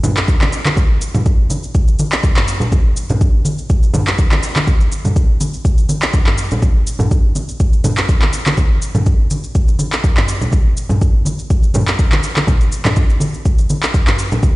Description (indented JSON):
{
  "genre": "house",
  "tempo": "123 BPM",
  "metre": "4/4",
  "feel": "swing 54% on 16ths",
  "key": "none",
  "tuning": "none",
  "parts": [
    { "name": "afro-pop drum kit", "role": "drums", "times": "0.0-14.5 s", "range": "handclaps, shaker, toms", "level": "-19 LUFS", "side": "equal", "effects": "studio reverb" },
    { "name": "congas", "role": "percussion", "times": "0.0-14.5 s", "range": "none", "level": "-20 LUFS", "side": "equal", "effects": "none" },
    { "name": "electronic kick drum", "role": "drums", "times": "0.3-14.5 s", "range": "none", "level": "-13 LUFS", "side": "equal", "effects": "studio reverb" }
  ],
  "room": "light reverb",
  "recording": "played on a big sound system in a bare room, stone room reverb, nothing above 10.5 kHz",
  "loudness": "-12 LUFS",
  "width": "side -20 dB against mid",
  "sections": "0.0-14.6 A section",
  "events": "none",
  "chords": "none",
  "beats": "0.28 | 0.77 1.26 1.75 2.23 | 2.72 3.21 3.70 4.18 | 4.67 5.16 5.65 6.14 | 6.62 7.11 7.60 8.09 | 8.57 9.06 9.55 10.04 | 10.53 11.01 11.50 11.99 | 12.48 12.96 13.45 13.94 | 14.43"
}